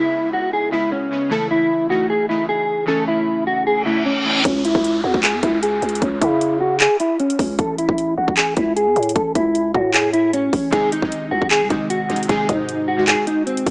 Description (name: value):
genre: hip hop, trap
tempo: 153 BPM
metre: 4/4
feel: half-time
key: C# harmonic minor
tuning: A4 = 440 Hz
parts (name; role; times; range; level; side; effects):
- mellow electric guitar; melody; 0.0-13.7 s; B#3 to A4; -18 LUFS; equal; ensemble chorus, low-pass filter
- glassy digital keys; accompaniment; 0.0-4.5, 10.7-13.7 s; B#2 to F#4; -24 LUFS; equal; chorus, low-pass filter
- downlifter and reverse cymbal; sound effects; 0.0-1.3, 3.8-7.6 s; none; -25 LUFS; equal; none
- growling 808-style bass; bass; 4.5-13.7 s; G#1 to C#3; -24 LUFS; equal; none
- trap drum kit; drums; 4.5-13.7 s; handclaps, hi-hat, kick drum; -20 LUFS; equal; none
room: light reverb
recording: dry, gritty hardware recording, small speaker sound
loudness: -16 LUFS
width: side -31 dB against mid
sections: 0.0-4.5 A section; 4.5-13.7 B section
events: reverse cymbal 3.8-4.5; filter sweep 4.5-10.7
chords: 0.0 C#m7; 1.3 A; 4.5 C#m; 7.6 A; 10.7 G#